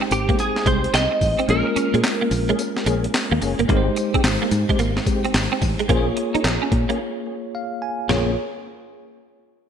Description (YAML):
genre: R&B, new jack swing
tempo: 109 BPM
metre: 4/4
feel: swing 64% on 16ths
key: Bb dorian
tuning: A4 = 440 Hz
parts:
  - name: bell-like tine electric piano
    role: accompaniment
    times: 0.0-8.4 s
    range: Ab3 to Ab5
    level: -25 LUFS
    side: left 1 dB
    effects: fast stereo tremolo
  - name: clean electric guitar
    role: riff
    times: 0.0-8.3 s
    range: Ab3 to Eb4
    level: -26 LUFS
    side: right 5 dB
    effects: ensemble chorus
  - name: direct-recorded clean electric guitar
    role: melody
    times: 0.1-3.1 s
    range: G4 to Eb5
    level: -23 LUFS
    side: right 2 dB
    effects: ensemble chorus
  - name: fingered electric bass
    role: bass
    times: 0.1-8.3 s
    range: Gb1 to Bb2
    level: -23 LUFS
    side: equal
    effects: none
  - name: breakbeat sampler-style drum kit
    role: drums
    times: 0.1-8.3 s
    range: handclaps, hi-hat, kick drum, snare drum, tambourine, toms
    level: -23 LUFS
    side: equal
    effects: vintage 12-bit sampler grit, gated reverb
  - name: tonewheel organ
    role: stabs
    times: 0.3-8.3 s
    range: Ab3 to Ab4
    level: -30 LUFS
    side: left 6 dB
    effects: overdrive, chorus vibrato, slow rotary speaker, digital delay
room: moderate plate reverb, RT60 2.0 s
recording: bright 1980s-style digital production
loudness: -18 LUFS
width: side -8 dB against mid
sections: 0.0-3.7 A section; 3.7-8.1 B section; 8.1-9.7 C section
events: kick muted 1.5-3.7; break 7.0-8.1; tine electric piano fill 7.3-8.1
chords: 0.0 Abmaj7; 1.5 Bbm7; 3.7 Abmaj7; 5.9 Bbm7